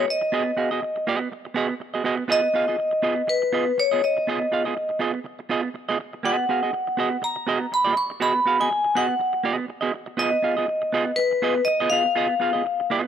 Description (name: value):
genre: disco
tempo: 122 BPM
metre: 4/4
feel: swing 56% on 16ths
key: G# dorian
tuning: A4 = 442 Hz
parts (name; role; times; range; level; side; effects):
- semi-hollow electric guitar; accompaniment; 0.0-13.1 s; B3 to E#5; -25 LUFS; right 5 dB; none
- vibraphone with hard mallets; melody; 0.1-12.8 s; B4 to C#6; -22 LUFS; left 1 dB; none
room: light reverb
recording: none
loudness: -21 LUFS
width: side -9 dB against mid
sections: 0.0-13.1 A section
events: none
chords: 0.0 G#m7; 2.3 C#9/B (rootless); 6.2 G#m7; 10.2 G#m6/B